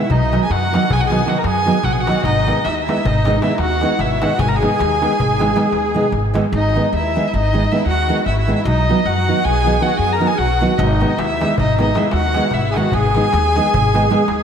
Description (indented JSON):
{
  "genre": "balkan folk, Balkan wedding band",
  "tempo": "308 BPM (eighths)",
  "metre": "11/8",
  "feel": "straight",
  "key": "G# minor",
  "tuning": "A4 = 439 Hz",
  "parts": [
    { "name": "warm violin", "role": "melody", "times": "0.0-14.4 s", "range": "D#5 to A#5", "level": "-20 LUFS", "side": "left 1 dB", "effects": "none" },
    { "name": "musette accordion", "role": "second line", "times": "0.0-14.4 s", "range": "D#4 to A#4", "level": "-22 LUFS", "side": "equal", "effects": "none" },
    { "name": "nylon-string guitar", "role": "accompaniment", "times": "0.0-14.2 s", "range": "D#3 to D#4", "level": "-20 LUFS", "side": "right 2 dB", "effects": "none" },
    { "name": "upright bass", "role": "bass", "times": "0.1-14.4 s", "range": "G#1 to F#2", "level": "-20 LUFS", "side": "equal", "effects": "none" },
    { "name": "darbuka", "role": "percussion", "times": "0.1-6.5, 10.8-14.4 s", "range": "none", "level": "-24 LUFS", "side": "left 3 dB", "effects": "none" }
  ],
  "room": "wet lush hall reverb, RT60 3.1 s",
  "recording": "dreamy mix soaked in reverb",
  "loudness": "-14 LUFS",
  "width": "side -7 dB against mid",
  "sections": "0.0-6.5 A section; 6.5-14.4 A section",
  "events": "drum fill 5.9-6.5",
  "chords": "0.1 B; 2.2 G#m; 8.7 B; 10.8 G#m"
}